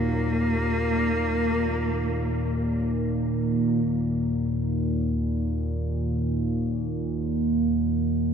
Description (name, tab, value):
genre	dark ambient drone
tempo	free time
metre	none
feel	none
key	unclear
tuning	A4 = 440 Hz
part	clear cello	melody	0.0-2.8 s	Bb3	-29 LUFS	equal	diffuse ambient delay
part	analog drone	drone	0.0-8.3 s	Eb2 to Bb2	-24 LUFS	equal	chorus
room	wet cathedral reverb, RT60 5.2 s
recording	in a vast, echoing space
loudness	-23 LUFS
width	side -7 dB against mid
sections	0.0-3.8 A section; 3.8-8.3 B section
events	none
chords	0.0 Eb5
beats	free time